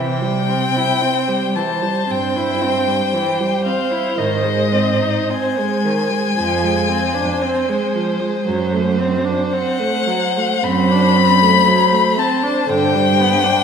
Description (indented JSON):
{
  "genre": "classical, slow romantic movement for string quartet",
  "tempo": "57 BPM",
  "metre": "4/4",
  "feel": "uneven beats, rubato",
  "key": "unclear",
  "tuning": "A4 = 440 Hz",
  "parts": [
    { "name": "warm violin", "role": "melody", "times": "0.0-13.6 s", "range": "Eb5 to B5", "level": "-18 LUFS", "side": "left 8 dB", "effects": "none" },
    { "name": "rich violin", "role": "second line", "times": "0.0-13.6 s", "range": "C5", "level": "-22 LUFS", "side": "right 1 dB", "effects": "none" },
    { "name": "warm viola", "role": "accompaniment", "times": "0.0-13.6 s", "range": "D3 to E4", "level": "-20 LUFS", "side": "right 2 dB", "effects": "none" },
    { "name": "rich cello", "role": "bass", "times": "0.0-13.5 s", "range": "F2 to C3", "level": "-21 LUFS", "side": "right 5 dB", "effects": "none" }
  ],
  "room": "wet recital hall reverb, RT60 1.7 s",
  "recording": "recorded in a church or concert hall",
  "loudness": "-14 LUFS",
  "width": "side -7 dB against mid",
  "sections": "0.0-13.6 A section",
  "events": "none",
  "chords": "0.0 C; 4.2 Ab; 6.4 Dm7b5/F; 8.5 D7/F#; 12.7 G"
}